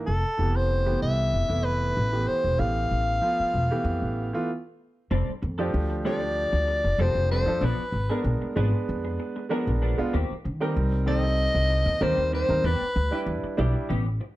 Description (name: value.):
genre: jazz.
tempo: 96 BPM.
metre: 4/4.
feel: straight.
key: F lydian.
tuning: A4 = 439 Hz.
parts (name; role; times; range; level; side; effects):
warm baby grand piano; accompaniment; 0.0-13.9 s; E3 to Cb5; -30 LUFS; right 3 dB; none.
breathy soprano saxophone; melody; 0.1-13.3 s; A4 to F5; -26 LUFS; left 1 dB; slapback echo, plate reverb.
upright bass; bass; 0.1-14.2 s; E1 to Eb3; -26 LUFS; equal; none.
semi-hollow electric guitar; stabs; 5.1-14.2 s; Eb3 to A4; -34 LUFS; left 2 dB; analog chorus.
room: moderate studio reverb, RT60 0.8 s.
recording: none.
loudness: -23 LUFS.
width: side -16 dB against mid.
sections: 0.0-5.1 A section; 5.1-14.4 B section.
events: stop 4.5-5.1; soprano saxophone solo 5.1-14.4.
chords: 0.1 Fmaj9#11; 5.1 F69; 7.6 Bb7b9; 10.1 Eb6; 12.6 Em7.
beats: | 0.07 0.70 1.34 1.97 | 2.60 3.23 3.85 4.48 | 5.11 5.74 6.37 7.00 | 7.62 8.25 8.88 9.51 | 10.13 10.76 11.38 12.01 | 12.64 13.26 13.89.